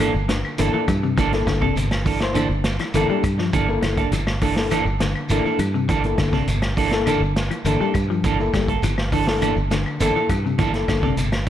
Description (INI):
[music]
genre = afrobeat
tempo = 102 BPM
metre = 4/4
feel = straight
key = G dorian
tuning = A4 = 439 Hz
[part]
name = overdriven reed electric piano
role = accompaniment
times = 0.0-11.1 s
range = Bb3 to C5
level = -26 LUFS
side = left 5 dB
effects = fast tremolo
[part]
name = semi-hollow electric guitar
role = arpeggios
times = 0.0-11.3 s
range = C3 to G3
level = -26 LUFS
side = left 5 dB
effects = spring reverb
[part]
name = clean electric guitar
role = stabs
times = 0.0-11.5 s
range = E3 to A4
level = -25 LUFS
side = right 6 dB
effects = harmonic tremolo
[part]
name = fingered electric bass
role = bass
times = 0.0-11.5 s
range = G1 to G2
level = -24 LUFS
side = equal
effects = none
[part]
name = claves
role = percussion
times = 0.0-11.5 s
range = none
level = -36 LUFS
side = left 4 dB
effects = none
[part]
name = shekere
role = percussion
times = 0.1-11.5 s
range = none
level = -31 LUFS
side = right 2 dB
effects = none
[part]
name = vintage drum kit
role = drums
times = 0.3-11.5 s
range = hi-hat, kick drum, snare drum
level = -26 LUFS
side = equal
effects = none
[sound]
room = moderate echo chamber reverb, RT60 1.6 s, small room ambience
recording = none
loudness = -18 LUFS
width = side -11 dB against mid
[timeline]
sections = 0.0-11.5 A section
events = none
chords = 0.0 Gm69